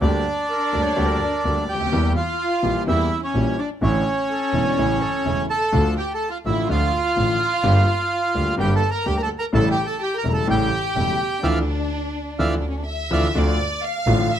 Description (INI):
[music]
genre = tango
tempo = 126 BPM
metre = 4/4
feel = rubato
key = D harmonic minor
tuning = A4 = 438 Hz
[part]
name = bandoneon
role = melody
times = 0.0-13.3 s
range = C#4 to Bb5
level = -23 LUFS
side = right 2 dB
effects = none
[part]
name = warm studio violin section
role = second line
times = 0.0-14.4 s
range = C#4 to F5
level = -27 LUFS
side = left 2 dB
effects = none
[part]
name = clear concert grand piano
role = accompaniment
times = 0.0-14.3 s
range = E1 to G4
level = -24 LUFS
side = left 2 dB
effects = none
[part]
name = clear double bass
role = bass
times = 0.0-14.3 s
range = E1 to E2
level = -23 LUFS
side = right 1 dB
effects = none
[part]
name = bright reedy silver concert flute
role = second line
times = 0.5-5.4 s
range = A4 to D5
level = -30 LUFS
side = right 5 dB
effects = none
[sound]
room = light reverb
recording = close, detailed microphones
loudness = -19 LUFS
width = side -10 dB against mid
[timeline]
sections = 0.0-13.4 A section; 13.4-14.4 B section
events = band accent 11.4-13.4; violin section solo 13.4-14.4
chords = 0.0 Gm/D; 1.9 Edim; 3.8 Asus4; 4.8 A; 5.7 Dm; 7.6 Gm; 9.5 A7; 11.4 Dmadd9; 13.4 Dm